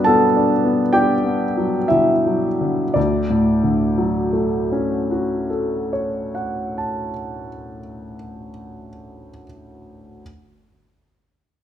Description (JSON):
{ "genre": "classical, impressionist solo piano", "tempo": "55-72 BPM", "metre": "5/4", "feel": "rubato", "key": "D major", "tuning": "A4 = 440 Hz", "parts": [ { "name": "clear grand piano", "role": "solo", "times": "0.0-10.2 s", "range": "D2 to B5", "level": "-18 LUFS", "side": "equal", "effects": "none" } ], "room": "moderate recital hall reverb, RT60 1.7 s", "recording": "minimal, uncompressed stereo recording, faint mains hum", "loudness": "-17 LUFS", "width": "side -10 dB against mid", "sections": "0.0-3.0 A section; 3.0-8.0 B section", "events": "slowing down 0.0-3.0", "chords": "0.0 Gmaj7; 3.0 Dmaj7", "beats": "0.06 0.93 1.90 | 2.95 3.97 4.97 5.97 6.97" }